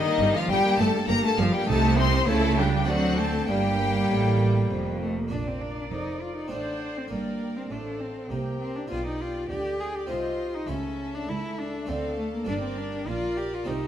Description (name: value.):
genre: classical, baroque-style concerto movement with solo episodes.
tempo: 100 BPM.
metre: 3/4.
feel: straight.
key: G minor.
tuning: A4 = 440 Hz.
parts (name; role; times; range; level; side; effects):
rich cello; melody; 0.0-13.9 s; Eb3 to Ab4; -29 LUFS; left 1 dB; none.
rich chamber violin section; melody; 0.0-13.9 s; D5 to C6; -31 LUFS; left 6 dB; none.
rich chamber violin section; second line; 0.0-13.9 s; Eb4 to F5; -33 LUFS; left 2 dB; none.
clear chamber viola section; accompaniment; 0.0-13.9 s; G3 to D5; -34 LUFS; right 2 dB; none.
harpsichord; accompaniment; 0.0-13.9 s; C#2 to E4; -35 LUFS; equal; none.
rich studio double bass section; bass; 0.2-13.9 s; F1 to D2; -30 LUFS; right 3 dB; none.
rich symphonic cello section; bass; 0.2-13.9 s; C#2 to D3; -32 LUFS; right 3 dB; none.
room: wet recital hall reverb, RT60 1.3 s.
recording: none.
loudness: -24 LUFS.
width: side -10 dB against mid.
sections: 0.0-5.3 A section; 5.3-13.9 B section.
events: none.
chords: 0.0 Eb/G; 1.7 Adim/C; 2.3 C#dim7; 2.9 D7; 3.5 Gm; 5.3 Bb; 6.5 D7/A; 7.1 Gm; 8.9 G/B; 10.1 Cm; 10.7 A/C#; 11.9 Dm; 12.5 Gm.